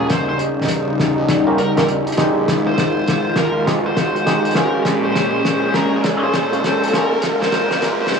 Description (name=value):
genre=glitch hop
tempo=101 BPM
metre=4/4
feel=swing 63% on 16ths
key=F minor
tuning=A4 = 439 Hz
part: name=high-gain lead guitar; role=melody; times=0.0-8.2 s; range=Bb4 to C5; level=-23 LUFS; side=left 1 dB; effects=distortion, cassette tape, analog delay
part: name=warm analog pad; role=sustained chords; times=0.0-8.2 s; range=Bb2 to F4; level=-20 LUFS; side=equal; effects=chorus, tremolo
part: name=clav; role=stabs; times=0.0-7.1 s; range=Db4 to C5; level=-23 LUFS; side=equal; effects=analog delay
part: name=phased detuned saw bass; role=bass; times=0.0-8.2 s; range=Eb1 to Eb2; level=-26 LUFS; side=right 1 dB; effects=phaser, tube saturation, high-pass filter
part: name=riser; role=sound effects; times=0.3-8.2 s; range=none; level=-23 LUFS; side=equal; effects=none
part: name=loose indie drum kit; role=drums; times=0.1-8.2 s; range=hi-hat, snare drum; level=-22 LUFS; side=equal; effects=cassette tape
room=wet spring reverb, RT60 1.6 s, studio ambience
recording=home recording on cassette, high-pass filter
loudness=-15 LUFS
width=side -6 dB against mid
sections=0.0-8.2 A section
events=build-up 0.0-8.2; drum fill 0.0-8.2; filter sweep 0.0-8.2; riser 0.3-8.2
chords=0.1 Eb7; 2.5 Fm7; 4.9 Bbm7; 7.2 Gbmaj9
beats=| 0.11 0.70 1.29 1.89 | 2.48 3.08 3.67 4.26 | 4.86 5.45 6.05 6.64 | 7.24 7.83